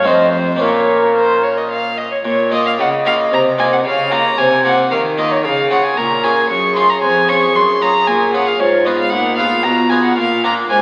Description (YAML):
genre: classical, baroque-style sonata movement with continuo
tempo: 113 BPM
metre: 3/4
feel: straight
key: Bb minor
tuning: A4 = 440 Hz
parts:
  - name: mellow baroque flute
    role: melody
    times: 0.0-10.8 s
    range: Eb4 to Eb5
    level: -21 LUFS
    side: equal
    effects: none
  - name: rich violin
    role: second line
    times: 0.0-10.8 s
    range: C5 to Db6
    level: -18 LUFS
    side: equal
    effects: none
  - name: harpsichord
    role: accompaniment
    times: 0.0-10.8 s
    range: F2 to Bb4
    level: -21 LUFS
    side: equal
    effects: none
  - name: rich cello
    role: bass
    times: 0.0-10.8 s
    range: F2 to Eb3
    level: -25 LUFS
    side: equal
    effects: none
room: wet concert hall reverb, RT60 2.1 s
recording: very old 78 rpm record, vinyl crackle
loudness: -15 LUFS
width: mono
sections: 0.0-2.2 A section; 2.2-10.8 B section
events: none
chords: 0.1 F7; 0.6 Bbm; 5.4 Db; 7.0 Db/F; 8.6 Fdim/Ab; 10.2 Bb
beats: 0.07 | 0.61 1.16 1.70 | 2.25 2.79 3.32 | 3.85 4.39 4.92 | 5.45 5.97 6.50 | 7.02 7.55 8.07 | 8.60 9.12 9.65 | 10.18 10.71